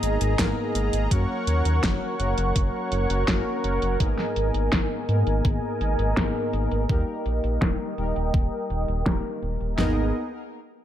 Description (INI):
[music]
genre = synthwave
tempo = 83 BPM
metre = 4/4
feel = straight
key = G# minor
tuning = A4 = 440 Hz
[part]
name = soft supersaw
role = sustained chords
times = 0.0-10.1 s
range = B3 to D#6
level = -29 LUFS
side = right 2 dB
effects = sidechain pumping, low-pass filter
[part]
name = analog synth brass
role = stabs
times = 0.0-10.1 s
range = G#2 to A#4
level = -30 LUFS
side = left 3 dB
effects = chorus, tape echo
[part]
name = round analog bass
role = bass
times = 0.0-10.1 s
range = D#1 to G#2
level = -25 LUFS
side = equal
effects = sidechain pumping
[part]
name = pop drum kit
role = drums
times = 0.0-9.8 s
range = hi-hat, snare drum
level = -29 LUFS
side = equal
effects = overdrive, low-pass filter on snare, low-pass filter on hats, low-pass filter on room
[part]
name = pop drum kit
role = drums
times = 0.4-10.0 s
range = kick drum, snare drum, toms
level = -25 LUFS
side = equal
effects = overdrive
[sound]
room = light reverb, digital ambience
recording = none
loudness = -22 LUFS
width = side -11 dB against mid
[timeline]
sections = 0.0-9.8 A section; 9.8-10.8 B section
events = filter sweep on drum 0.0-9.8; filter sweep on analog synth bass 0.0-9.8; filter sweep on supersaw synth 0.0-9.8; filter sweep on analog polysynth 0.0-9.8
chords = 0.0 G#madd9; 1.1 F#; 4.0 G#madd9; 6.9 D#; 9.8 G#madd9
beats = 0.39 | 1.11 1.83 2.56 3.28 | 4.00 4.73 5.45 6.17 | 6.89 7.62 8.34 9.06 | 9.79